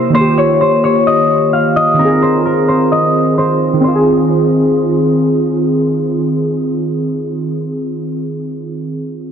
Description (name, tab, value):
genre	hip hop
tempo	130 BPM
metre	4/4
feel	half-time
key	F minor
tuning	A4 = 440 Hz
part	concert harp	melody	0.0-5.8 s	Bb4 to F5	-14 LUFS	left 2 dB	low-pass filter, digital delay
part	warbly lo-fi synth keys	accompaniment	0.0-9.3 s	C3 to Ab4	-13 LUFS	right 1 dB	chorus, low-pass filter
room	light reverb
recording	dense, heavily limited modern master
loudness	-11 LUFS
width	side -8 dB against mid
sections	0.0-3.8 A section; 3.8-7.5 B section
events	filter sweep 0.0-3.8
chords	0.1 Ebadd9; 2.0 Fm7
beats	| 0.15 0.61 1.07 1.53 | 1.99 2.45 2.92 3.38 | 3.84 4.30 4.76 5.22 | 5.68 6.15 6.61 7.07